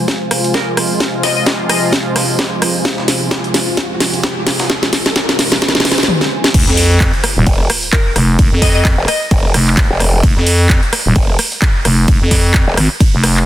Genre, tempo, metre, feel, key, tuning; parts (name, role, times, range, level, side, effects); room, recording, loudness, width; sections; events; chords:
bass house; 130 BPM; 4/4; swing 56% on 16ths; F minor; A4 = 438 Hz
sweeping resonant pad; sustained chords; 0.0-6.0 s; C3 to F4; -20 LUFS; right 1 dB; chorus, sidechain pumping
riser and sub drop; sound effects; 1.4-8.4 s; -25 LUFS; equal
granular cloud pad; texture; 0.0-6.1 s; F4 to Ab5; -25 LUFS; left 1 dB; built-in reverb, sidechain pumping
breakbeat sampler-style drum kit; drums; 0.1-13.4 s; hi-hat, snare drum; -25 LUFS; equal; sidechain pumping on hats, high-pass filter on hats, high-pass filter on snare, high-pass filter on room
electronic kick drum; drums; 0.1-13.1 s; -13 LUFS; equal; high-pass filter on kick, high-pass filter on room
house drum kit; drums; 0.1-13.4 s; crash cymbal, handclaps, hi-hat, ride cymbal, rim click, snare drum, toms; -15 LUFS; equal
glassy wavetable pluck; melody; 0.5-2.1, 7.9-9.4 s; Bb4 to Eb5; -21 LUFS; left 4 dB; chorus, dub echo
growling FM bass; bass; 6.5-13.5 s; Eb1 to F2; -12 LUFS; equal; tube saturation, sidechain pumping
growl bass; bass; 7.5-12.8 s; F1; -14 LUFS; equal; chorus, tube saturation, sidechain pumping
light reverb; dense, heavily limited modern master; -11 LUFS; side -13 dB against mid
0.0-6.5 A section; 6.5-13.5 B section
build-up 0.0-6.5; drum fill 0.0-6.1, 6.1-6.5; riser 1.4-6.1; drop 6.5-13.5; impact 6.5-8.4
0.0 Fm; 6.5 N.C.